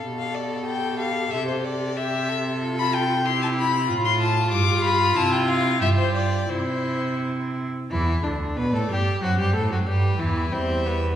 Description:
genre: quick classical-period movement for string quartet.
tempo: 92 BPM.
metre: 2/4.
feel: rubato.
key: C major, G major from 7.9 s.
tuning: A4 = 439 Hz.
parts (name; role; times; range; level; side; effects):
rich violin; second line; 0.0-11.2 s; B3 to B4; -28 LUFS; left 3 dB; none.
rich viola; accompaniment; 0.0-11.1 s; D3 to G4; -30 LUFS; right 2 dB; none.
rich cello; bass; 0.0-11.2 s; D2 to C3; -25 LUFS; right 2 dB; none.
warm violin; melody; 0.2-11.2 s; B4 to D6; -26 LUFS; left 5 dB; none.
room: wet recital hall reverb, RT60 1.4 s.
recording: heard from further back in the room.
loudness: -21 LUFS.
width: side -10 dB against mid.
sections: 0.0-7.9 A section; 7.9-11.2 B section.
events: none.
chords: 0.0 G/B; 1.3 C; 2.6 Fadd9/C; 3.3 C; 3.9 F/A; 4.5 G; 5.2 C; 5.8 G5; 6.5 C; 7.9 G; 9.2 F#dim; 9.9 Em.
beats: | 0.04 0.68 | 1.33 1.97 | 2.62 3.25 | 3.88 4.51 | 5.15 5.81 | 6.50 7.21 | 7.91 8.57 | 9.23 9.87 | 10.53.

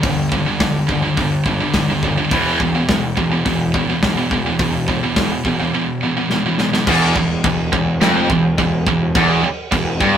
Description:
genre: heavy metal.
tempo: 105 BPM.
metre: 4/4.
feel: straight.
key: E phrygian.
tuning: A4 = 441 Hz.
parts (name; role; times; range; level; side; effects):
heavy high-gain guitar; riff; 0.0-10.2 s; E2 to E3; -18 LUFS; right 3 dB; distortion.
high-gain distorted guitar; riff; 0.0-10.2 s; E2 to E3; -23 LUFS; left 7 dB; distortion.
fuzz picked electric bass; bass; 0.0-10.2 s; E1 to G1; -23 LUFS; equal; overdrive.
modern studio drum kit; drums; 0.0-10.1 s; crash cymbal, hi-hat, kick drum, snare drum; -20 LUFS; equal; none.
fuzz guitar; riff; 6.9-10.2 s; E2 to G2; -21 LUFS; equal; distortion.
room: moderate small room reverb, RT60 0.6 s.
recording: rough rehearsal-room recording.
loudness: -15 LUFS.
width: side -9 dB against mid.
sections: 0.0-6.9 A section; 6.9-10.2 B section.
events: drum fill 6.3-6.9; half time 6.9-10.2.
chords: 0.0 G5; 2.3 E5; 6.9 Em.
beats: | 0.03 0.60 1.17 1.74 | 2.31 2.88 3.45 4.02 | 4.59 5.17 5.74 6.31 | 6.88 7.45 8.02 8.59 | 9.15 9.72.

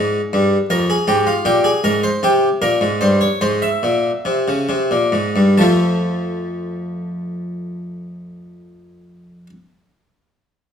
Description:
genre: classical, baroque-style two-part invention for harpsichord.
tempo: 66-83 BPM.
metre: 4/4.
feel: straight.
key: unclear.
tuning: A4 = 441 Hz.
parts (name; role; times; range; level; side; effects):
harpsichord; solo; 0.0-9.5 s; F2 to A5; -15 LUFS; equal; none.
room: wet stone room reverb, RT60 1.1 s.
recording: heard from further back in the room.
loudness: -15 LUFS.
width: side -7 dB against mid.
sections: 0.0-5.6 A section; 5.6-9.2 B section.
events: slowing down 0.0-5.6.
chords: 0.0 N.C.; 0.7 Bb5/F; 2.2 C7; 5.6 F.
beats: 0.70 1.45 | 2.22 3.01 3.83 4.69 | 5.58 6.50 7.41 8.32.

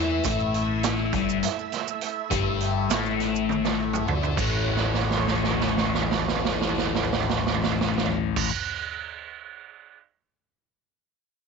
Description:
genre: psychedelic rock.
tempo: 203 BPM (eighths).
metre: 7/8.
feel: straight.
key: A mixolydian.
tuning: A4 = 436 Hz.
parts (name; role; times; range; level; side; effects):
ensemble organ-string; sustained chords; 0.0-8.4 s; A3 to E5; -32 LUFS; right 11 dB; phaser, ensemble chorus.
fuzz guitar; riff; 0.0-8.5 s; G2 to E4; -26 LUFS; left 11 dB; distortion, phaser.
deep dub picked electric bass; bass; 0.0-8.4 s; G1 to E2; -31 LUFS; right 1 dB; none.
raw garage drum kit; drums; 0.2-10.0 s; crash cymbal, hi-hat, kick drum, snare drum, toms; -27 LUFS; right 9 dB; none.
maracas; percussion; 0.2-8.4 s; none; -36 LUFS; right 16 dB; none.
room: light reverb.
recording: 1960s-style stereo with parts hard left and right, nothing above 7.7 kHz.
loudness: -22 LUFS.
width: side -5 dB against mid.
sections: 0.0-4.4 A section; 4.4-8.5 B section.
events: drum fill 3.5-4.4, 4.7-8.4.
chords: 0.0 A5; 4.4 A.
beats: | 0.25 0.54 0.84 1.13 1.43 1.72 2.02 | 2.31 2.61 2.90 3.20 3.49 3.79 4.08 | 4.38 4.67 4.97 5.26 5.56 5.85 6.15 | 6.44 6.74 7.03 7.33 7.63 7.92 8.22.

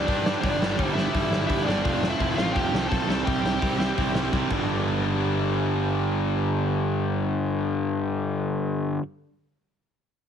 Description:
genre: punk rock.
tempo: 169 BPM.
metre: 4/4.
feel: straight.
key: G mixolydian.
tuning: A4 = 440 Hz.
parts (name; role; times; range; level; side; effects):
smooth overdriven lead guitar; melody; 0.0-4.3 s; D4 to A5; -29 LUFS; left 1 dB; none.
crunchy overdriven guitar; riff; 0.0-9.0 s; F2 to C4; -28 LUFS; right 12 dB; none.
distorted electric guitar; riff; 0.0-9.0 s; G2 to G4; -29 LUFS; left 13 dB; overdrive.
fuzz picked electric bass; bass; 0.0-9.0 s; F1 to G2; -29 LUFS; left 1 dB; overdrive.
raw garage drum kit; drums; 0.1-4.6 s; crash cymbal, hi-hat, kick drum, snare drum; -28 LUFS; equal; none.
room: light reverb.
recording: heavily compressed radio sound.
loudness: -22 LUFS.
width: side -8 dB against mid.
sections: 0.0-4.7 A section; 4.7-7.5 B section.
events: drum fill 4.3-4.7.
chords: 0.0 G; 1.8 F; 3.1 C; 4.5 G.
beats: 0.08 | 0.43 0.79 1.14 1.49 | 1.85 2.20 2.55 2.91 | 3.26 3.62 3.97 4.32 | 4.68 5.03 5.39 5.74 | 6.10 6.45 6.81 7.16.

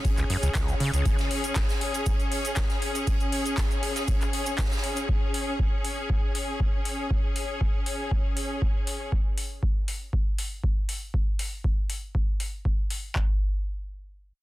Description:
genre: acid house.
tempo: 119 BPM.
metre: 4/4.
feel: straight.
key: unclear.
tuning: A4 = 440 Hz.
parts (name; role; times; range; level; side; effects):
booming analog drum machine; drums; 0.0-13.3 s; handclaps, kick drum; -26 LUFS; equal; none.
booming analog drum machine; drums; 0.0-13.0 s; handclaps, hi-hat; -35 LUFS; left 1 dB; none.
bright studio string section; texture; 0.0-9.1 s; C#4 to C#5; -31 LUFS; left 1 dB; sidechain pumping.
big rock drum kit; drums; 0.1-5.0 s; hi-hat, snare drum; -40 LUFS; right 2 dB; sidechain pumping on hats, high-pass filter on hats, high-pass filter on snare, high-pass filter on room.
tube shaker; percussion; 0.1-5.1 s; none; -39 LUFS; right 4 dB; none.
acid bass, saw; riff; 0.2-1.0 s; C#2 to C#3; -27 LUFS; equal; overdrive, sidechain pumping, digital delay.
room: studio reverb.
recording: dense, heavily limited modern master.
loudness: -25 LUFS.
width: side -17 dB against mid.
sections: 0.0-13.2 A section; 13.2-14.4 B section.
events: none.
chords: 0.0 C#5; 13.2 N.C..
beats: 0.05 0.55 | 1.05 1.56 2.06 2.57 | 3.07 3.58 4.08 4.58 | 5.09 5.59 6.10 6.60 | 7.11 7.61 8.11 8.62 | 9.12 9.63 10.13 10.63 | 11.14 11.64 12.15 12.65 | 13.16.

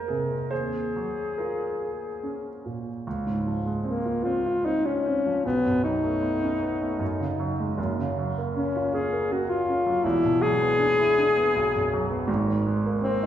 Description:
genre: classical, impressionist duo for alto saxophone and grand piano.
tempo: 68-83 BPM.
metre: 3/4.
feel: rubato.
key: Db major.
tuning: A4 = 445 Hz.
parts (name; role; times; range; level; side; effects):
mellow alto saxophone; melody; 0.0-13.3 s; Bb3 to Bb4; -24 LUFS; left 2 dB; none.
warm grand piano; accompaniment; 0.0-13.3 s; E1 to Eb5; -27 LUFS; right 2 dB; none.
room: wet recital hall reverb, RT60 1.7 s.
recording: recorded in a church or concert hall.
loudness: -23 LUFS.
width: side -10 dB against mid.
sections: 0.0-3.1 A section; 3.1-13.3 B section.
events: none.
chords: 0.0 Fm7; 0.5 Ebm11; 3.1 Dbmaj7; 5.4 Cb9; 7.0 Gbsus2; 7.8 Gbmaj7; 10.0 E9; 11.5 Cb5; 12.3 Abadd9.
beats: | 0.51 1.38 2.22 | 3.06 3.84 4.65 | 5.45 6.23 7.01 | 7.78 8.55 9.31 | 10.04 10.79 11.55 | 12.28 13.04.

